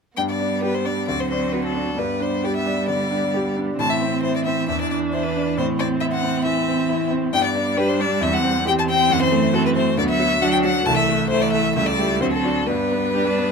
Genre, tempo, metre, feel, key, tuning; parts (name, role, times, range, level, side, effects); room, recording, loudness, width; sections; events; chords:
quick classical-period movement for piano quartet; 134 BPM; 4/4; rubato; G major; A4 = 437 Hz
clear violin; melody; 0.2-13.5 s; A4 to A5; -22 LUFS; left 4 dB
rich cello; second line; 0.2-13.5 s; E3 to G3; -26 LUFS; right 6 dB
bright grand piano; accompaniment; 0.2-13.5 s; C2 to G4; -23 LUFS; left 2 dB
rich viola; accompaniment; 0.2-13.5 s; A3 to G4; -25 LUFS; right 4 dB
light reverb; minimal, uncompressed stereo recording; -18 LUFS; side -5 dB against mid
0.2-13.5 A section
0.2 G; 1.1 D7; 2.0 G; 3.8 Am; 4.7 Cmaj9/E (rootless); 5.6 Am; 7.3 G; 8.2 C/E; 9.1 F#dim; 10.0 Bm/D; 10.9 Am/C; 11.8 A7/C#; 12.2 D7; 12.7 G